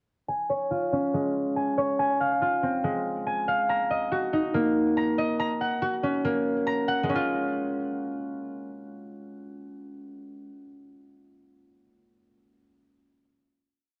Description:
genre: hip hop, trap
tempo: 141 BPM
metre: 4/4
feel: half-time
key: Db major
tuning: A4 = 443 Hz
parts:
  - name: concert harp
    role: solo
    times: 0.3-10.6 s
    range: Ab3 to Bb5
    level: -28 LUFS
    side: equal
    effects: low-pass filter
room: light reverb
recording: worn, warbling old tape, cassette tape, warbly pitch drift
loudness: -27 LUFS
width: mono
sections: 0.3-7.1 breakdown; 7.1-10.5 final chord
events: filter sweep on harp 0.3-7.1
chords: 0.3 Db; 2.0 Fm; 3.7 Ebm; 5.4 Gb; 7.1 Db

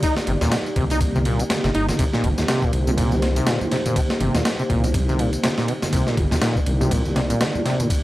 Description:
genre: breakbeat, breaks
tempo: 122 BPM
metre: 4/4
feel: swing 57% on 16ths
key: C minor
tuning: A4 = 440 Hz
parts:
  - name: dark analog pad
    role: sustained chords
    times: 0.0-8.0 s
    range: Bb3 to D5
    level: -26 LUFS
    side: equal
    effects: chorus, sidechain pumping
  - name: overdriven acid bass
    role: riff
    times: 0.0-7.9 s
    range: Bb2 to Eb4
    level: -24 LUFS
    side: equal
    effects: wide subtle chorus, analog delay
  - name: breakbeat sampler-style drum kit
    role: drums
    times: 0.0-8.0 s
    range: kick drum, ride cymbal, snare drum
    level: -23 LUFS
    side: equal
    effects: none
  - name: tambourine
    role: drums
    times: 0.0-8.0 s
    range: none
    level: -36 LUFS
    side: left 1 dB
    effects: none
  - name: dark detuned saw bass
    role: bass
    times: 0.3-7.3 s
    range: G1 to Eb2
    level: -23 LUFS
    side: equal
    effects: none
  - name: congas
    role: percussion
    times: 0.3-7.9 s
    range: none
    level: -29 LUFS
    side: right 1 dB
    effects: none
room: light reverb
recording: dry, gritty hardware recording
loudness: -18 LUFS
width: side -16 dB against mid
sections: 0.0-8.0 A section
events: none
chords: 0.0 Cm7

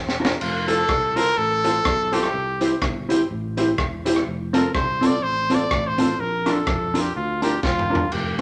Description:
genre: ska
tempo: 124 BPM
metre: 4/4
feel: swing 57% on 8ths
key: F major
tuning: A4 = 440 Hz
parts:
  - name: sustaining fretless electric bass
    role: bass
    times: 0.0-8.4 s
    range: E1 to F2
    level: -33 LUFS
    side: equal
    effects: none
  - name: raw garage drum kit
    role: drums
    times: 0.1-8.4 s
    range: crash cymbal, hi-hat, kick drum, rim click, snare drum, toms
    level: -28 LUFS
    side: equal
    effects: none
  - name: mellow electric guitar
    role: accompaniment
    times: 0.2-8.4 s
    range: C4 to C5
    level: -27 LUFS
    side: equal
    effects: tube saturation
  - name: warm upright piano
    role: stabs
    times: 0.2-8.4 s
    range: C4 to Bb4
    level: -31 LUFS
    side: equal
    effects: none
  - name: clear trumpet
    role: melody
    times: 0.4-8.4 s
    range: F4 to D5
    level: -25 LUFS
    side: equal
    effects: none
room: moderate large studio reverb, RT60 1.2 s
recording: none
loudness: -22 LUFS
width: mono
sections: 0.4-8.4 A section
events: drum fill 0.0-0.4, 7.6-8.1; trumpet solo 0.4-8.4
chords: 0.4 F; 2.3 C; 4.3 F; 6.2 Bb

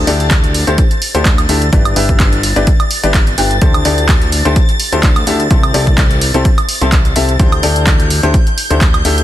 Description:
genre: piano house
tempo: 127 BPM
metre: 4/4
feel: swing 54% on 16ths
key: unclear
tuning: A4 = 444 Hz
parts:
  - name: string machine, violins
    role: sustained chords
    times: 0.0-9.2 s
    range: G6 to A6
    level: -22 LUFS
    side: equal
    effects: ensemble chorus, sidechain pumping
  - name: clear upright piano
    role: riff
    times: 0.0-9.2 s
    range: C4 to G5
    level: -17 LUFS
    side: left 3 dB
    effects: sidechain pumping, ping-pong delay
  - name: fat analog bass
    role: bass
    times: 0.0-9.2 s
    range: G1 to D2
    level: -15 LUFS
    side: equal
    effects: sidechain pumping
  - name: punchy analog drum machine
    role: drums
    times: 0.1-9.2 s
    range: handclaps, hi-hat, woodblock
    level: -17 LUFS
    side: right 2 dB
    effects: none
  - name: electronic kick drum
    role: drums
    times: 0.3-8.9 s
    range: none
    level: -12 LUFS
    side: equal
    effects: none
room: digital ambience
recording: dense, heavily limited modern master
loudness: -9 LUFS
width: side -13 dB against mid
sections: 0.0-9.2 A section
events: none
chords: 0.0 D9sus4; 1.7 G6; 3.6 D9sus4; 5.5 C6; 7.4 D9sus4

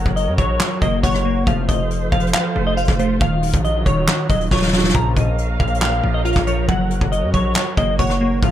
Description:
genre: hip hop, trap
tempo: 138 BPM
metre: 4/4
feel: half-time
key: unclear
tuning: A4 = 440 Hz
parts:
  - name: semi-hollow electric guitar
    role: melody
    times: 0.0-8.5 s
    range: C5 to Bb5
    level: -23 LUFS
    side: left 1 dB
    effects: analog chorus, low-pass filter, tape echo
  - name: glassy digital keys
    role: accompaniment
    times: 0.0-8.5 s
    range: Bb2 to Gb5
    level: -23 LUFS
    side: right 1 dB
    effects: chorus, low-pass filter
  - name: muted studio string section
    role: sustained chords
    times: 0.0-8.5 s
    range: Eb3 to F5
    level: -28 LUFS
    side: right 1 dB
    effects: none
  - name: distorted 808-style bass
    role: bass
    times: 0.0-8.5 s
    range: Eb1 to Gb2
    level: -22 LUFS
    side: equal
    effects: distortion
  - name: soft brush drum kit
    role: drums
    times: 0.1-8.5 s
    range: handclaps, hi-hat, kick drum, rim click, snare drum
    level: -20 LUFS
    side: equal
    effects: none
  - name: chorused polysynth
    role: stabs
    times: 1.5-1.8, 4.9-5.3, 8.4-8.5 s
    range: A2 to F3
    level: -24 LUFS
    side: left 5 dB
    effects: none
room: studio reverb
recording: none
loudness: -16 LUFS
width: side -11 dB against mid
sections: 0.0-8.5 A section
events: drum fill 4.5-4.9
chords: 0.0 Gb; 1.5 F; 3.2 Ebmadd9; 4.9 Bbm; 6.7 Gb

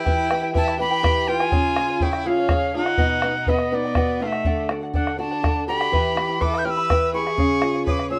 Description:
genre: andean folk, Andean ensemble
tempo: 82 BPM (dotted quarters)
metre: 6/8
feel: straight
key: E dorian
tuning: A4 = 440 Hz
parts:
  - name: reedy quena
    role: melody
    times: 0.0-8.2 s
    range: D5 to G6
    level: -26 LUFS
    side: equal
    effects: none
  - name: clear violin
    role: second line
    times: 0.0-8.2 s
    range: A3 to E5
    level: -30 LUFS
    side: equal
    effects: none
  - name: charango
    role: accompaniment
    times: 0.0-8.2 s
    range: E4 to B5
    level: -29 LUFS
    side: equal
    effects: none
  - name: flamenco guitar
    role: accompaniment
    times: 0.0-8.2 s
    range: B2 to E5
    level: -29 LUFS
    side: equal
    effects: none
  - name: bombo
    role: percussion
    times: 0.1-8.1 s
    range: none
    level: -26 LUFS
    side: equal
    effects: none
room: light reverb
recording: dark, warm production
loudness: -21 LUFS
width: mono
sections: 0.1-8.2 A section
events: none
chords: 0.1 Em; 1.5 C#; 3.0 B; 4.5 D; 5.9 Em; 7.4 C#

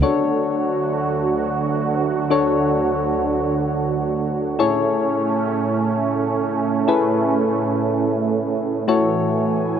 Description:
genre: pop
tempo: free time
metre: none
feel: none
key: unclear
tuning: A4 = 441 Hz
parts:
  - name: soft electric-piano-like synth keys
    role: accompaniment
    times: 0.0-9.8 s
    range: A3 to C#5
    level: -21 LUFS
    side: left 6 dB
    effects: chorus
  - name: filtered supersaw swell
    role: sustained chords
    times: 0.0-9.8 s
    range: D2 to G#5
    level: -20 LUFS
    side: right 5 dB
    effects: none
room: little or no reverb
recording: dry, close 1970s-style studio recording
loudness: -18 LUFS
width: side -8 dB against mid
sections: 0.0-9.8 A section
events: none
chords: 0.0 Dmaj7; 4.6 Amaj7; 8.9 F#m7/A

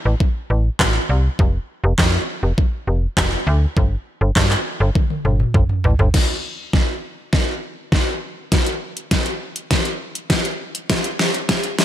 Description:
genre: dance-pop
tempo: 101 BPM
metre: 4/4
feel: straight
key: A minor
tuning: A4 = 439 Hz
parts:
  - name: slap-like FM bass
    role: bass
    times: 0.1-6.1 s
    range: F1 to G2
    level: -17 LUFS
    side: equal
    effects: sidechain pumping
  - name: pop drum kit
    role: drums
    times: 0.2-11.8 s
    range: crash cymbal, handclaps, hi-hat, kick drum, snare drum, toms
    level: -18 LUFS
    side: equal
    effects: overdrive
room: light reverb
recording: high-pass filter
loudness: -17 LUFS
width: side -12 dB against mid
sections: 0.0-6.1 A section; 6.1-11.8 B section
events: drum fill 5.0-6.1, 6.1-11.8; build-up 6.1-11.8; filter sweep 6.1-11.8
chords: none

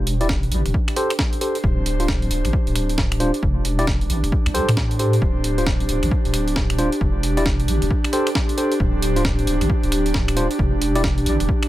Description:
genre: UK garage, two-step garage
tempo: 134 BPM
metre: 4/4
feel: swing 62% on 16ths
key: unclear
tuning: A4 = 440 Hz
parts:
  - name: deep soft wobble bass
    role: bass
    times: 0.0-11.5 s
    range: D1 to A2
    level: -21 LUFS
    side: equal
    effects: chorus
  - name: airy breathy pad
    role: texture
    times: 0.0-11.7 s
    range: D4 to C5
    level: -25 LUFS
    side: right 1 dB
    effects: chorus, sidechain pumping
  - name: breakbeat sampler-style drum kit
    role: drums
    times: 0.1-11.7 s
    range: finger snaps, hi-hat, snare drum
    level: -26 LUFS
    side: equal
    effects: none
  - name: tine electric piano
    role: stabs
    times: 0.2-11.0 s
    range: D4 to D5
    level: -24 LUFS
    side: equal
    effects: low-pass filter, tape echo
  - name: electronic kick drum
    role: drums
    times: 0.3-11.6 s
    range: none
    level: -22 LUFS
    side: equal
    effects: overdrive
room: moderate studio reverb, RT60 0.5 s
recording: none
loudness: -18 LUFS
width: side -15 dB against mid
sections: 0.0-11.7 A section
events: filter sweep on tine electric piano 0.0-11.7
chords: 0.0 Em7; 0.5 Am7; 1.6 D7(no3); 3.4 Em7; 4.1 Am7; 5.2 D7(no3); 7.0 Em7; 7.7 Am7; 8.8 D7(no3); 10.6 Em7

